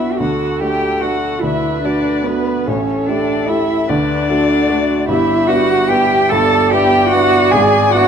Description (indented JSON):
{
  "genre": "classical, slow romantic movement for piano quartet",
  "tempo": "49 BPM (dotted quarters)",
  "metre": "6/8",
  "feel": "rubato",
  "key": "unclear",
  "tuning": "A4 = 439 Hz",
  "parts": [
    { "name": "muted violin", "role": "melody", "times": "0.0-8.1 s", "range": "B4 to A5", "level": "-20 LUFS", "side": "left 9 dB", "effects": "none" },
    { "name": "muted cello", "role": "second line", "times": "0.0-8.1 s", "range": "B3 to A4", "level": "-16 LUFS", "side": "right 3 dB", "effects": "none" },
    { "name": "muted viola", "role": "accompaniment", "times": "0.0-8.1 s", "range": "F#4 to D5", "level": "-23 LUFS", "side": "right 1 dB", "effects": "none" },
    { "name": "warm baby grand piano", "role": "accompaniment", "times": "0.0-8.1 s", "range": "G1 to G4", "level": "-18 LUFS", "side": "equal", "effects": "none" }
  ],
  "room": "moderate large studio reverb, RT60 1.2 s",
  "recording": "dark, warm production",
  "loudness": "-12 LUFS",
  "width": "side -7 dB against mid",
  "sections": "0.0-8.1 A section",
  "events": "none",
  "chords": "0.2 D; 2.7 A5; 3.9 D; 5.1 Em7/G; 7.5 E7/G#",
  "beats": "| 0.20 1.44 | 2.67 3.89 | 5.08 6.31 | 7.52"
}